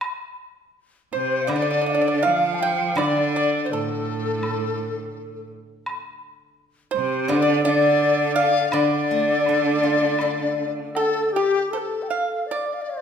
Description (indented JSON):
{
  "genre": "chinese traditional, Chinese chamber ensemble",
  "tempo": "82 BPM",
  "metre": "4/4",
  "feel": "rubato",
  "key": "D yu mode",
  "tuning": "A4 = 441 Hz",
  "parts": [
    { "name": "woodblock", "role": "percussion", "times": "0.0-11.1 s", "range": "none", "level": "-32 LUFS", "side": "equal", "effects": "none" },
    { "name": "mellow xiao", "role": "melody", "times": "1.1-13.0 s", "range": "G4 to A5", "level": "-26 LUFS", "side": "left 2 dB", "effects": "none" },
    { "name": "bright cello", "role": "second line", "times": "1.1-11.3 s", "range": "A2 to F3", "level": "-25 LUFS", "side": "right 5 dB", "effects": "none" },
    { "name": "pipa", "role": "second line", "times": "1.1-13.0 s", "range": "G4 to G5", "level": "-27 LUFS", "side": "right 5 dB", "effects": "none" },
    { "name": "reedy large dizi", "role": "second line", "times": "1.1-13.0 s", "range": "G4 to F5", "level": "-25 LUFS", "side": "left 6 dB", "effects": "none" },
    { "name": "steel-string zither", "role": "accompaniment", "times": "1.5-11.7 s", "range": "D3 to A4", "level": "-27 LUFS", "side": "left 1 dB", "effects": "none" }
  ],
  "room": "wet recital hall reverb, RT60 1.3 s",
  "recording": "none",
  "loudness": "-19 LUFS",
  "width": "side -7 dB against mid",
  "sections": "0.0-11.7 A section; 11.7-13.0 B section",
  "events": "none",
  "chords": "none"
}